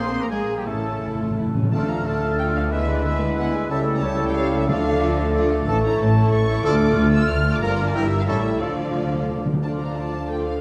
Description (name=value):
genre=classical, dramatic, fast romantic movement for symphony orchestra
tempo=182 BPM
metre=3/4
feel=straight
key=D minor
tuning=A4 = 439 Hz
part: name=warm symphonic violin section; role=melody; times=0.0-10.6 s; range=D5 to F6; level=-35 LUFS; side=equal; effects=none
part: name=flute section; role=second line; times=0.0-10.6 s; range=G4 to F6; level=-34 LUFS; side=equal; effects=none
part: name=warm clarinet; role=second line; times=0.0-10.6 s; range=F4 to F5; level=-32 LUFS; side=equal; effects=none
part: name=warm symphonic violin section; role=second line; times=0.0-10.6 s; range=F4 to F5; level=-36 LUFS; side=equal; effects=none
part: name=mellow bassoon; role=accompaniment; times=0.0-10.6 s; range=F3 to Bb3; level=-31 LUFS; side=equal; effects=none
part: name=warm symphonic viola section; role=accompaniment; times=0.0-10.6 s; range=F3 to Ab4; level=-32 LUFS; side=equal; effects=none
part: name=mellow French horn section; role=sustained chords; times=0.0-10.6 s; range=E3 to A4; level=-33 LUFS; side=equal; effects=none
part: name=clear trumpet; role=stabs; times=0.0-8.7 s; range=G4 to C5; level=-33 LUFS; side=equal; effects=none
part: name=rich symphonic cello section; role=bass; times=0.0-10.6 s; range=D2 to C4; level=-30 LUFS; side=equal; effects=none
part: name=warm symphonic double bass section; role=bass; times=0.0-10.6 s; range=G1 to D2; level=-27 LUFS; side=equal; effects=none
part: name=timpani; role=percussion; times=0.7-2.2, 4.7-5.1, 8.6-9.6 s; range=A2 to D3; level=-29 LUFS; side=equal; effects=none
room=wet concert hall reverb, RT60 1.8 s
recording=dark, warm production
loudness=-21 LUFS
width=mono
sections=0.0-1.7 A section; 1.7-9.6 B section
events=timpani fill 0.7-1.7, 8.6-9.6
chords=0.0 Bb7(no3); 0.7 A; 1.7 Dm; 2.7 E7/D; 3.7 A7/C#; 4.7 Dm; 5.7 A; 6.6 Dm; 7.6 Gm7; 7.9 Edim/G; 8.3 A7; 8.6 Dm